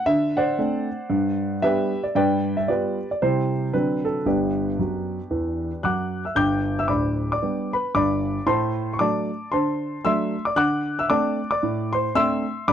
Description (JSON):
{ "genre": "jazz, stride piano", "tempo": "114 BPM", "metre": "4/4", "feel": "swing 59% on 8ths", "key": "G major", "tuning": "A4 = 440 Hz", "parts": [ { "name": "warm concert grand piano", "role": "solo", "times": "0.0-12.7 s", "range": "D1 to G6", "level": "-21 LUFS", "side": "equal", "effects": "none" } ], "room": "light reverb", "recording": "dry, close 1970s-style studio recording", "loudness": "-21 LUFS", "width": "side -9 dB against mid", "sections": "0.0-6.4 A section; 6.4-12.7 A section", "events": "grand piano fill 4.8-6.4", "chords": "0.0 D7; 1.1 G; 2.1 G7; 3.2 C; 3.7 D7; 4.3 G; 8.5 D7/A", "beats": "| 0.04 0.57 1.10 1.62 | 2.15 2.68 3.20 3.73 | 4.25 4.78 5.31 5.83 | 6.36 6.89 7.41 7.94 | 8.46 8.99 9.52 10.04 | 10.57 11.09 11.62 12.15 | 12.67" }